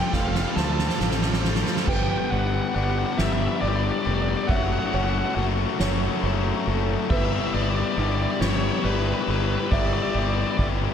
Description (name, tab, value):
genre	post-rock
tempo	46 BPM (dotted quarters)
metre	6/8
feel	straight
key	unclear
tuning	A4 = 443 Hz
part	biting lead guitar	melody	0.0-10.7 s	B4 to A5	-30 LUFS	right 1 dB	overdrive, slapback echo, digital delay
part	chorused pulse-width pad	sustained chords	0.0-10.9 s	F3 to C#6	-38 LUFS	right 2 dB	none
part	electric guitar through a small old amp	arpeggios	0.0-1.9 s	F3 to C4	-36 LUFS	right 1 dB	none
part	felt-muted upright piano	arpeggios	0.0-10.9 s	D4 to E5	-35 LUFS	right 6 dB	slapback echo, digital delay
part	cranked stack guitar	riff	0.0-10.9 s	F3 to G4	-27 LUFS	left 9 dB	overdrive
part	distorted electric guitar	riff	0.0-1.9 s	F4 to A4	-34 LUFS	right 10 dB	overdrive
part	fuzz fingered electric bass	bass	0.1-10.9 s	F1 to D2	-26 LUFS	right 1 dB	overdrive
part	soft-mallet drum kit	drums	0.1-10.8 s	crash cymbal, kick drum, ride cymbal, snare drum	-27 LUFS	equal	none
room	moderate lush hall reverb, RT60 2.6 s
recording	big arena sound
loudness	-21 LUFS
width	side -8 dB against mid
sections	0.0-1.9 A section; 1.9-10.9 B section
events	build-up 0.0-1.9; drum fill 0.0-1.9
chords	0.0 Fadd9; 1.9 G; 4.5 F#m7; 7.1 Em7/G